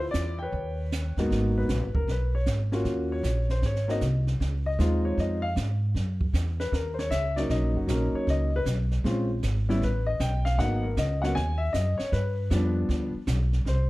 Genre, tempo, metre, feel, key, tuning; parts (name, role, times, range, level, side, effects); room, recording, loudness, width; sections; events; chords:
jazz piano trio; 155 BPM; 4/4; swing 66% on 8ths; G# minor; A4 = 439 Hz
warm grand piano; melody; 0.0-13.9 s; Ab2 to G#5; -29 LUFS; left 1 dB; plate reverb
upright bass; bass; 0.0-13.9 s; F#1 to G#2; -26 LUFS; equal
jazz brush drum kit; drums; 0.1-13.9 s; brushed snare drum, hi-hat, kick drum, snare drum; -34 LUFS; right 2 dB
light reverb; dark, warm production; -24 LUFS; side -19 dB against mid
0.0-1.3 A section; 1.3-13.7 B section
grand piano solo 1.3-13.9
0.0 Dmadd9; 0.5 Eb7b13; 1.3 G#m9; 2.9 D#m7; 3.6 G#; 4.4 C#maj9; 6.0 F#7; 7.5 Bmaj9; 9.0 A#m7; 9.8 Asus2; 10.6 G#m9; 12.1 G7